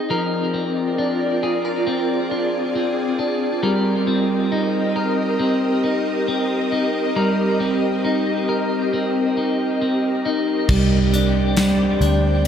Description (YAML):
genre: dream pop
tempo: 68 BPM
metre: 4/4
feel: straight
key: Eb major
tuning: A4 = 439 Hz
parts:
  - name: ethereal airy pad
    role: sustained chords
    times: 0.0-12.5 s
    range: C4 to G5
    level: -22 LUFS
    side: equal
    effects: ensemble chorus, built-in reverb
  - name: clean electric guitar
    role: arpeggios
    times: 0.0-12.5 s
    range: F3 to Bb4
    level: -20 LUFS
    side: equal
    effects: wide subtle chorus, digital delay
  - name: vintage muted picked electric bass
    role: bass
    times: 10.7-12.5 s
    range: C2 to D2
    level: -20 LUFS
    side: equal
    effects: none
  - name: huge arena drum kit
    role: drums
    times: 10.7-12.5 s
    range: crash cymbal, hi-hat, kick drum, snare drum, tambourine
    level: -23 LUFS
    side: equal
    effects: none
room: moderate plate reverb, RT60 1.8 s, studio ambience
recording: none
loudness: -18 LUFS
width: side -8 dB against mid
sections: 0.0-10.7 A section; 10.7-12.5 B section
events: none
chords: 0.1 Bbadd9; 3.6 Eb6; 10.7 Csus2